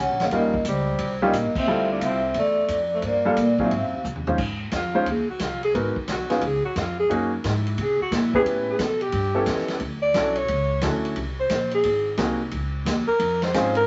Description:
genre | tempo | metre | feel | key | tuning
jazz, small-group swing and bop | 177 BPM | 4/4 | swing 65% on 8ths | unclear | A4 = 441 Hz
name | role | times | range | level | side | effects
vibraphone with medium mallets | melody | 0.0-4.0 s | C5 to Gb5 | -27 LUFS | equal | none
breathy alto saxophone | second line | 0.0-13.9 s | G3 to D5 | -27 LUFS | equal | none
upright bass | bass | 0.0-13.9 s | Eb1 to C3 | -30 LUFS | equal | none
vintage drum kit | drums | 0.2-13.8 s | crash cymbal, hi-hat, kick drum, ride cymbal, snare drum, toms | -33 LUFS | equal | none
warm concert grand piano | accompaniment | 0.3-13.7 s | Gb3 to C5 | -26 LUFS | equal | none
room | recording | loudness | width
moderate studio reverb, RT60 0.6 s | vinyl crackle, nothing above 7.7 kHz | -23 LUFS | mono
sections
0.0-4.4 A section; 4.4-13.9 B section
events
band accent 1.5; drum fill 4.0-4.4; alto saxophone solo 4.4-13.9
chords
0.3 Eb9; 1.7 Dm11; 3.0 Gm7; 3.7 Ab6; 4.4 Dbmaj9 (rootless); 5.7 Abm7; 6.4 Db; 7.1 Gb69; 8.5 A9; 9.8 Dmaj7; 11.2 Ab7; 12.5 Dbmaj9

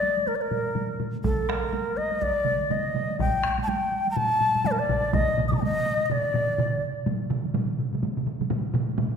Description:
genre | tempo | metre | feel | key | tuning
japanese traditional, taiko drum ensemble | 124 BPM | 4/4 | swing 60% on 16ths | D miyako bushi | A4 = 436 Hz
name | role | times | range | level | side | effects
shakuhachi | melody | 0.0-6.8 s | A4 to Eb6 | -25 LUFS | left 1 dB | none
taiko ensemble | percussion | 0.0-9.1 s | none | -32 LUFS | right 2 dB | none
solo taiko drums | percussion | 0.5-9.1 s | none | -30 LUFS | left 4 dB | none
solo taiko drums | percussion | 1.2-5.3 s | none | -31 LUFS | right 1 dB | none
taiko ensemble | percussion | 1.2-9.1 s | none | -30 LUFS | right 6 dB | none
room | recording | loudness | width
wet scoring stage reverb, RT60 1.7 s | minimal, uncompressed stereo recording | -23 LUFS | side -7 dB against mid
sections
0.0-7.1 A section; 7.1-9.2 B section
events
stop 6.1-7.1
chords
none

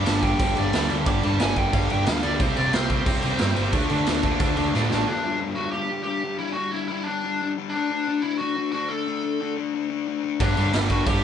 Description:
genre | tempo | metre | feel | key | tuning
punk rock | 180 BPM | 4/4 | straight | unclear | A4 = 439 Hz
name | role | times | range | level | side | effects
biting lead guitar | melody | 0.0-11.2 s | D4 to D6 | -28 LUFS | equal | overdrive
distorted electric guitar | riff | 0.0-5.1, 10.4-11.2 s | G2 to D4 | -29 LUFS | right 10 dB | overdrive
high-gain distorted guitar | riff | 0.0-5.1, 10.4-11.2 s | G2 to D4 | -30 LUFS | right 1 dB | distortion
overdriven semi-hollow guitar | riff | 0.0-11.2 s | G2 to D4 | -28 LUFS | left 9 dB | none
hollow-body short-scale picked electric bass | bass | 0.0-5.0, 10.4-11.2 s | G1 to D3 | -26 LUFS | right 1 dB | none
raw garage drum kit | drums | 0.1-5.0, 10.4-11.1 s | crash cymbal, kick drum, snare drum | -25 LUFS | right 1 dB | none
room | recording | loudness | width
light reverb | band playing live in one room, nothing above 10.3 kHz | -21 LUFS | side -8 dB against mid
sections
0.0-5.1 A section; 5.1-11.2 B section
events
lead electric guitar solo 0.0-5.1; drum fill 4.7-5.1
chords
0.0 G5; 2.4 C5; 3.7 D5; 5.1 G5; 7.7 D5; 10.4 G5

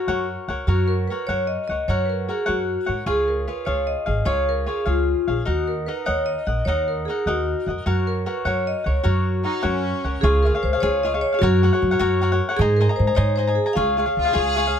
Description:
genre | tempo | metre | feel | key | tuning
mexican folk, mariachi | 101 BPM (dotted quarters) | 6/8 | straight | F# major, Db major from 10.2 s | A4 = 440 Hz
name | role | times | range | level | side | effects
vibraphone with medium hard mallets | melody | 0.0-14.7 s | E#4 to F5 | -23 LUFS | left 1 dB | none
cavaquinho | accompaniment | 0.0-14.8 s | D#4 to Bb5 | -26 LUFS | left 3 dB | none
upright bass | bass | 0.1-14.7 s | G#1 to G#2 | -23 LUFS | right 1 dB | none
clear chamber violin section | second line | 9.4-10.2, 14.2-14.8 s | C#4 to Ab4 | -25 LUFS | left 1 dB | none
room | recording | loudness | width
little or no reverb | close, detailed microphones | -19 LUFS | side -8 dB against mid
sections
0.7-10.2 A section; 10.2-14.8 B section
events
none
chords
0.0 F#; 3.1 C#; 5.5 D#m; 7.9 F#; 10.2 Db; 11.4 Gb; 12.6 Abadd9; 13.8 Db

